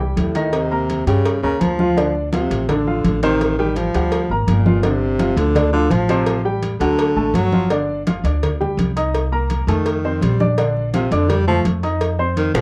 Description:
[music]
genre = Afro-Cuban jazz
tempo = 167 BPM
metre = 4/4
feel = straight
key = G minor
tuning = A4 = 440 Hz
[part]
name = warm baby grand piano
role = accompaniment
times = 0.0-12.6 s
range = C3 to Eb6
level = -24 LUFS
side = equal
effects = none
[part]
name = upright bass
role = bass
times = 0.0-12.6 s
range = G1 to G2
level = -23 LUFS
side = equal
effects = none
[part]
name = congas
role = percussion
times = 0.0-12.6 s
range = none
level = -25 LUFS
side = equal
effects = none
[part]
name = breathy baritone saxophone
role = second line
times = 0.2-12.6 s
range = A2 to G3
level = -22 LUFS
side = equal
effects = none
[part]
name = cowbell and bongos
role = percussion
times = 0.2-12.6 s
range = none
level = -28 LUFS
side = equal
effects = none
[sound]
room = moderate club reverb, RT60 0.6 s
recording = worn, warbling old tape, cassette tape, warbly pitch drift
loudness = -18 LUFS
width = mono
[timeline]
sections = 0.0-7.7 A section; 7.7-12.6 A section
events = baritone saxophone solo 0.0-12.6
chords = 0.0 C5; 0.5 Eb9; 2.0 Dm7; 3.4 F13/A; 4.1 Daug; 4.8 Gsus2; 6.3 Am7; 7.0 D; 7.7 G7sus4; 9.1 Cm7; 9.9 F7; 10.6 Bbmaj7; 12.0 F5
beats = 0.17 | 0.53 0.89 1.25 1.61 | 1.97 2.32 2.68 3.04 | 3.40 3.76 4.12 4.48 | 4.83 5.19 5.55 5.91 | 6.27 6.63 6.99 7.34 | 7.70 8.06 8.42 8.78 | 9.14 9.50 9.86 10.21 | 10.57 10.93 11.29 11.65 | 12.01 12.37

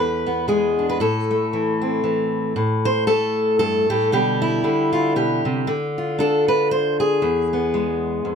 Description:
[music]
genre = folk, solo fingerstyle acoustic guitar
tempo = 116 BPM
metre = 3/4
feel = swing 57% on 8ths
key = unclear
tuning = A4 = 440 Hz
[part]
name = fingerpicked steel-string acoustic guitar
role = solo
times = 0.0-8.3 s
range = E2 to C5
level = -18 LUFS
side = equal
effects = none
[sound]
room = light reverb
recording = close, detailed microphones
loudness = -18 LUFS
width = side -6 dB against mid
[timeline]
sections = 0.0-2.6 A section; 2.6-8.3 B section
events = none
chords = 0.0 E7; 1.0 Am; 2.6 Gsus24; 4.1 G/B; 5.7 Dm; 7.2 E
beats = 0.48 | 1.00 1.52 2.04 | 2.56 3.08 3.60 | 4.12 4.63 5.15 | 5.67 6.19 6.70 | 7.22 7.74 8.26

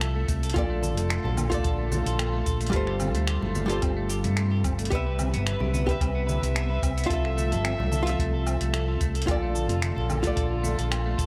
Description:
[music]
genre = sunset chillout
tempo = 110 BPM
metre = 4/4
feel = straight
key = unclear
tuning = A4 = 441 Hz
[part]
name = archtop guitar, miked and amplified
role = accompaniment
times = 0.0-11.3 s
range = G3 to E5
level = -34 LUFS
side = equal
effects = tape echo
[part]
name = dark chamber string section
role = sustained chords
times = 0.0-11.3 s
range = C3 to E5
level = -36 LUFS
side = equal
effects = none
[part]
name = clean electric guitar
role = arpeggios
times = 0.0-11.3 s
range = A3 to B4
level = -37 LUFS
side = equal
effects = harmonic tremolo, tape echo
[part]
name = overdriven fingered electric bass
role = bass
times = 0.0-11.3 s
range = F1 to G2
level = -30 LUFS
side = equal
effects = none
[part]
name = dusty soul sampler-style drum kit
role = drums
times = 0.0-11.3 s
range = cabasa, finger snaps, hi-hat, woodblock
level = -36 LUFS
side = equal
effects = overdrive
[part]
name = electronic kick drum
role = drums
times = 0.3-11.3 s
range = none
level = -31 LUFS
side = equal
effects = none
[part]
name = congas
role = percussion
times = 0.8-10.8 s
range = none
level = -38 LUFS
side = equal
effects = none
[sound]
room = light reverb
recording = none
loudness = -26 LUFS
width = mono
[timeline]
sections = 0.0-11.3 A section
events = none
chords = 0.0 Fmaj7; 0.6 Bbmaj7; 2.7 G9sus4; 4.9 Cmaj7; 7.1 Fmaj7; 9.3 Bbmaj7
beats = 0.01 | 0.56 1.10 1.65 2.19 | 2.74 3.29 3.83 4.38 | 4.92 5.47 6.01 6.56 | 7.10 7.65 8.19 8.74 | 9.29 9.83 10.38 10.92

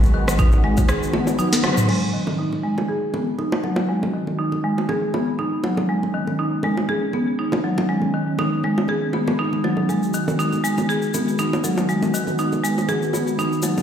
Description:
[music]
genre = afro house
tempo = 120 BPM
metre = 4/4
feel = swing 56% on 16ths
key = G# minor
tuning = A4 = 440 Hz
[part]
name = warm analog pad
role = sustained chords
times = 0.0-13.8 s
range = D#3 to F#4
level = -27 LUFS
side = equal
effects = chorus, sidechain pumping
[part]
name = warm 808-style bass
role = bass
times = 0.0-0.9 s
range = G#1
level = -20 LUFS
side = equal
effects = sidechain pumping
[part]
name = cabasa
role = percussion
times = 0.0-1.9, 9.9-13.8 s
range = none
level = -33 LUFS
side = left 4 dB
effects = none
[part]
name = marimba with medium hard mallets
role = arpeggios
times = 0.1-13.7 s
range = D#3 to G#4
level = -21 LUFS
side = equal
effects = sidechain pumping, low-pass filter, digital delay
[part]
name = afro-pop drum kit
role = drums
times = 0.3-2.0 s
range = crash cymbal, rim click, snare drum, toms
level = -24 LUFS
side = equal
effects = none
[part]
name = bongos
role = percussion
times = 0.3-13.8 s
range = none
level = -28 LUFS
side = right 2 dB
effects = none
[part]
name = electronic kick drum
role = drums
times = 0.4-0.9 s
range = none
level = -17 LUFS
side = equal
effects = none
[sound]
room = wet lush hall reverb, RT60 2.0 s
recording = played on a big sound system in a bare room, large studio reverb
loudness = -19 LUFS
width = side -8 dB against mid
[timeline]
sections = 0.0-1.9 A section; 1.9-13.8 B section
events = break 0.9-1.9; drum fill 1.4-1.9; band accent 1.6; filter sweep on marimba 1.9-13.8; filter sweep on analog synth pad 1.9-13.8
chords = 0.0 G#m7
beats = 0.39 0.89 1.39 | 1.89 2.39 2.89 3.39 | 3.89 4.39 4.89 5.39 | 5.89 6.39 6.89 7.39 | 7.89 8.39 8.89 9.39 | 9.89 10.39 10.89 11.39 | 11.89 12.39 12.89 13.39

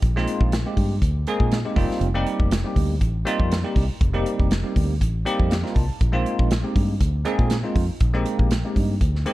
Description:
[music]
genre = electric jazz fusion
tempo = 120 BPM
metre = 4/4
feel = swing 54% on 16ths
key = Bb mixolydian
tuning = A4 = 442 Hz
[part]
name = fingered electric bass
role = bass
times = 0.0-9.2 s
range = F1 to Bb2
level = -23 LUFS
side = equal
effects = none
[part]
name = modern studio drum kit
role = drums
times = 0.0-9.3 s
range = hi-hat, kick drum, snare drum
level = -23 LUFS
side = equal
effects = none
[part]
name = bell-like tine electric piano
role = accompaniment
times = 0.2-9.3 s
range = G3 to A5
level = -26 LUFS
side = right 1 dB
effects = medium stereo tremolo, lush chorus
[sound]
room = little or no reverb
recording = dark, warm production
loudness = -19 LUFS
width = side -17 dB against mid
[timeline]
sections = 0.0-9.3 A section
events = tine electric piano fill 5.0-6.0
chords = 0.0 Bb9sus4; 1.8 F9sus4; 6.0 Bb9sus4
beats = | 0.02 0.52 1.02 1.52 | 2.02 2.51 3.01 3.51 | 4.01 4.51 5.01 5.51 | 6.01 6.51 7.01 7.51 | 8.01 8.51 9.01

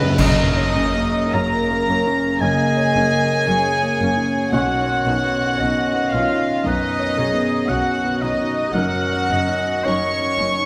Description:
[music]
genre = cinematic, emotional film score for orchestra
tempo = 56 BPM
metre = 4/4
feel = rubato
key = F# major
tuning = A4 = 439 Hz
[part]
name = warm studio violin section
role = melody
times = 0.0-10.7 s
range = B4 to C#6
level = -27 LUFS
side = equal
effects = none
[part]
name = clear oboe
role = second line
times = 0.0-10.7 s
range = B4 to C#6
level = -26 LUFS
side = equal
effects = none
[part]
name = warm studio violin section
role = second line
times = 0.0-10.7 s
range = B3 to C#5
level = -30 LUFS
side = equal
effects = none
[part]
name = warm grand piano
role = accompaniment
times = 0.0-10.7 s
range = B1 to C#5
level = -26 LUFS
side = equal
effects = none
[part]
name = dark studio viola section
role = accompaniment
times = 0.2-10.5 s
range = A#3 to D#4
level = -35 LUFS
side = equal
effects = none
[part]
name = mellow French horn section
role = sustained chords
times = 0.2-10.7 s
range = C#3 to C#4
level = -28 LUFS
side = equal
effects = none
[part]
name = rich symphonic double bass section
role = bass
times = 0.2-10.5 s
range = F#1 to B1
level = -35 LUFS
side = equal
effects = none
[part]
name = warm studio cello section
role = bass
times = 0.2-10.5 s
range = F#2 to B2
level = -32 LUFS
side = equal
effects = none
[part]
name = clash cymbals and concert bass drum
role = percussion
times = 0.2-2.4 s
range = none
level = -26 LUFS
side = equal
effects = none
[part]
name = warm clarinet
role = second line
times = 2.4-10.6 s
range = F#4 to D#5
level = -28 LUFS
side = equal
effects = none
[sound]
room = moderate concert hall reverb, RT60 2.4 s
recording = none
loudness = -19 LUFS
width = mono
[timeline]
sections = 0.2-10.7 A section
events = band accent 0.2-1.3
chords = 0.2 F#6; 4.5 Badd9; 8.7 F#6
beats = | 0.17 1.33 2.41 3.47 | 4.53 5.59 6.65 7.69 | 8.75 9.85

